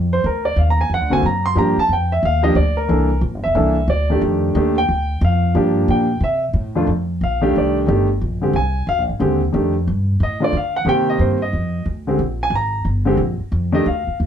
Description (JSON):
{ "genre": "jazz piano trio", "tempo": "181 BPM", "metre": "4/4", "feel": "swing 63% on 8ths", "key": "F mixolydian", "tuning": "A4 = 439 Hz", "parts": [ { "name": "upright bass", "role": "bass", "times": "0.0-14.3 s", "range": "E1 to D3", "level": "-19 LUFS", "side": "equal", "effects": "none" }, { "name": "warm concert grand piano", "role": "melody", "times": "0.1-14.2 s", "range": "F2 to C6", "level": "-18 LUFS", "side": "equal", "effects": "none" } ], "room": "moderate studio reverb, RT60 0.5 s", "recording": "heard from further back in the room", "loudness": "-16 LUFS", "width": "side -9 dB against mid", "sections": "0.0-6.9 A section; 6.9-14.3 A section", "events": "grand piano solo 0.0-14.3", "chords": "0.2 Daug; 1.6 Gm7; 2.9 C13; 4.2 F13; 5.6 Gm7; 6.2 N.C.; 6.9 F13; 8.2 Bb13; 9.5 F13; 10.9 Cm7; 11.5 N.C.; 12.2 Bb7(no3); 13.5 F7(no3)" }